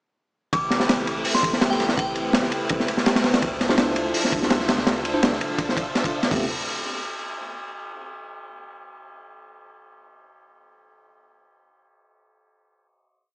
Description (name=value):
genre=drum and bass, jungle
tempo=166 BPM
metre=4/4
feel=straight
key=A minor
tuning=A4 = 440 Hz
part: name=glassy synth bell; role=melody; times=0.5-2.2 s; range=G5 to D6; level=-27 LUFS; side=equal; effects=chorus, phaser, dub echo
part: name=soft string machine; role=sustained chords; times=0.5-6.4 s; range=F3 to E5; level=-28 LUFS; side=equal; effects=ensemble chorus
part: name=soft dub sub bass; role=bass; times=0.5-6.5 s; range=D1 to D2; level=-40 LUFS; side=equal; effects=none
part: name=crunchy breakbeat drum kit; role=drums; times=0.5-6.4 s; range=hi-hat, kick drum, ride cymbal, snare drum, toms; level=-22 LUFS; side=equal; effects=none
part: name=bell-like tine electric piano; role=stabs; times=3.7-6.4 s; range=A3 to C5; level=-28 LUFS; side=equal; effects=fast stereo tremolo, dub echo
room=moderate plate reverb, RT60 2.1 s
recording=dry, gritty hardware recording, transformer saturation, small speaker sound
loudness=-20 LUFS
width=side -35 dB against mid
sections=0.5-6.3 drop; 6.3-7.8 final chord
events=drop 0.5-6.3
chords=0.5 Am9; 3.4 Dm9; 6.3 Am9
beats=| 0.53 0.89 1.25 1.61 | 1.97 2.34 2.70 3.06 | 3.42 3.78 4.14 4.50 | 4.87 5.23 5.59 5.95 | 6.31